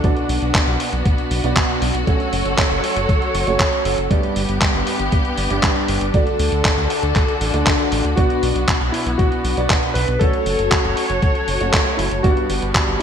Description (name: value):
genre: italo disco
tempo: 118 BPM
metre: 4/4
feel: straight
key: unclear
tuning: A4 = 440 Hz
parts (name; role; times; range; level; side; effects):
- rich studio string section; sustained chords; 0.0-13.0 s; D3 to C#5; -23 LUFS; left 2 dB; vintage 12-bit sampler grit
- warm baby grand piano; stabs; 0.0-13.0 s; G2 to D5; -24 LUFS; right 3 dB; lush chorus, low-pass filter, digital delay
- dusty soul sampler-style drum kit; drums; 0.0-13.0 s; handclaps, hi-hat; -22 LUFS; equal; gated reverb
- electronic kick drum; drums; 0.0-12.9 s; none; -19 LUFS; equal; none
- round analog bass; bass; 0.3-13.0 s; F#1 to D2; -22 LUFS; equal; none
- warm electric grand piano; melody; 8.2-13.0 s; E4 to B4; -23 LUFS; left 1 dB; analog chorus, ping-pong delay
room: moderate lush hall reverb, RT60 1.7 s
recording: bright 1980s-style digital production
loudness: -16 LUFS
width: side -8 dB against mid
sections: 0.0-13.0 A section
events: none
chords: 0.0 Bm; 2.1 F#m; 4.1 G; 6.1 D; 8.2 Bm; 10.2 F#m; 12.2 G